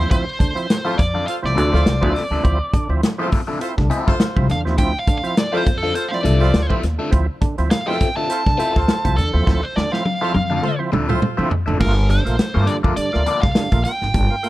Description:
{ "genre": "funk", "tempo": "103 BPM", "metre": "4/4", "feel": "swing 56% on 16ths", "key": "D minor", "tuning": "A4 = 440 Hz", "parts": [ { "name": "nasal lead guitar with a parked wah", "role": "melody", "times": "0.0-14.5 s", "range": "A4 to A5", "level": "-23 LUFS", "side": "equal", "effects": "overdrive" }, { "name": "overdriven tonewheel organ", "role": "stabs", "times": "0.0-14.5 s", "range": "G2 to F4", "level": "-26 LUFS", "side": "right 3 dB", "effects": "chorus vibrato" }, { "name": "upright bass", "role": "bass", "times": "0.0-14.3 s", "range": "G1 to D3", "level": "-19 LUFS", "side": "equal", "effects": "none" }, { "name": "warm soul drum kit", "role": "drums", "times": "0.1-14.5 s", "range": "crash cymbal, hi-hat, kick drum, snare drum, toms", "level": "-20 LUFS", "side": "equal", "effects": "none" }, { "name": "warm horn section", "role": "second line", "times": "0.8-11.5 s", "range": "F4 to C5", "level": "-28 LUFS", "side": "equal", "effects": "none" }, { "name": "overdriven electric guitar", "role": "accompaniment", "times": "0.8-13.4 s", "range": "Bb3 to F5", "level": "-26 LUFS", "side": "left 5 dB", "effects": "phaser" } ], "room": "little or no reverb", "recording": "dark, warm production", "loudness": "-16 LUFS", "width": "side -16 dB against mid", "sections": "0.0-11.8 A section; 11.8-14.5 B section", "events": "lead electric guitar solo 0.0-11.8; drum fill 9.5-11.8", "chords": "0.0 Dm9; 11.8 Gm9" }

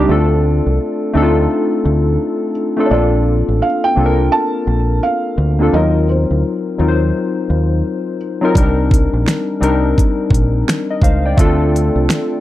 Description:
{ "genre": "lo-fi hip hop", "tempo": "85 BPM", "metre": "4/4", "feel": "swing 63% on 16ths", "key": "unclear", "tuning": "A4 = 439 Hz", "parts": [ { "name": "felt-muted upright piano", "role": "melody", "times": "0.0-8.2 s", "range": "C5 to A5", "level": "-20 LUFS", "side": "right 2 dB", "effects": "low-pass filter, plate reverb" }, { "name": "warm analog keys", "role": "accompaniment", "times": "0.0-12.4 s", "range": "Gb3 to G5", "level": "-16 LUFS", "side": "left 2 dB", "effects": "chorus, cassette tape, low-pass filter, plate reverb" }, { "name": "deep dub fingered electric bass", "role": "bass", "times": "0.0-12.1 s", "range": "A1 to Eb2", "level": "-15 LUFS", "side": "equal", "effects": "none" }, { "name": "pop drum kit", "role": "drums", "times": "8.6-12.3 s", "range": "finger snaps, hi-hat, kick drum, snare drum", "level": "-14 LUFS", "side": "equal", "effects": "none" }, { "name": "finger snap", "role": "percussion", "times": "9.3-12.3 s", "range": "none", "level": "-28 LUFS", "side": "right 13 dB", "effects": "none" } ], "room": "light reverb", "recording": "none", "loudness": "-13 LUFS", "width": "side -14 dB against mid", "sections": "0.0-12.4 A section", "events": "none", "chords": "0.1 Dm7; 2.9 Bbmaj7; 5.7 Ebm6; 8.6 Cm7; 11.4 Dm7" }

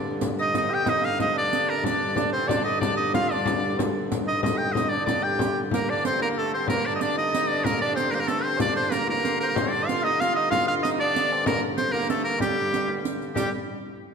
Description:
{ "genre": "medieval dance", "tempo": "125 BPM (dotted quarters)", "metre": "6/8", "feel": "straight", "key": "G minor", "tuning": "A4 = 441 Hz", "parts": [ { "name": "dark hurdy-gurdy", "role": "drone", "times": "0.0-13.4 s", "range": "G2 to D3", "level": "-31 LUFS", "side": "left 1 dB", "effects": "none" }, { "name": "frame drum", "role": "percussion", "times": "0.2-13.5 s", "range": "none", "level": "-30 LUFS", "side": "left 5 dB", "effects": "none" }, { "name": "riq", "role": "percussion", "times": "0.2-13.5 s", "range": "none", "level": "-32 LUFS", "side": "right 6 dB", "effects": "none" }, { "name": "bright shawm", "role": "melody", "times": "0.4-13.5 s", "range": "G4 to G5", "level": "-26 LUFS", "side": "equal", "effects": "none" }, { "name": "bright shawm", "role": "second line", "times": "0.4-13.5 s", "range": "G4 to G5", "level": "-34 LUFS", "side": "left 4 dB", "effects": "none" }, { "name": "warm trumpet", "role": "second line", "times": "0.4-13.5 s", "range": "G3 to G4", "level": "-31 LUFS", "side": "right 5 dB", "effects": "none" } ], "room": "wet concert hall reverb, RT60 2.3 s", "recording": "none", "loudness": "-22 LUFS", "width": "side -6 dB against mid", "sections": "0.0-5.7 A section; 5.7-13.4 B section", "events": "speeding up 0.0-14.1", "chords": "none" }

